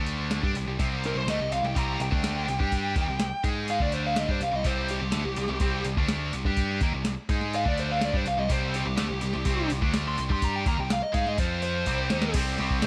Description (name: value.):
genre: hard rock.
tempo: 125 BPM.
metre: 4/4.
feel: straight.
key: C minor.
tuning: A4 = 440 Hz.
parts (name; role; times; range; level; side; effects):
heavy high-gain guitar; riff; 0.0-12.9 s; C3 to Ab4; -33 LUFS; equal; distortion.
growling picked electric bass; bass; 0.0-12.9 s; C2 to Ab2; -33 LUFS; equal; overdrive.
soft vintage rhythm box; drums; 0.1-12.9 s; crash cymbal, hi-hat, kick drum, snare drum; -31 LUFS; equal; none.
high-gain lead guitar; melody; 1.1-12.9 s; G4 to C6; -33 LUFS; equal; distortion, slapback echo.
room: digital ambience.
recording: none.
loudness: -27 LUFS.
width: mono.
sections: 0.0-12.3 A section.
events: lead electric guitar solo 0.0-12.3; drum fill 11.9-12.3.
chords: 0.4 Cm; 3.8 D5; 4.3 Cm; 7.7 D5; 8.1 Cm; 11.4 F5; 11.9 Cm; 12.3 C5.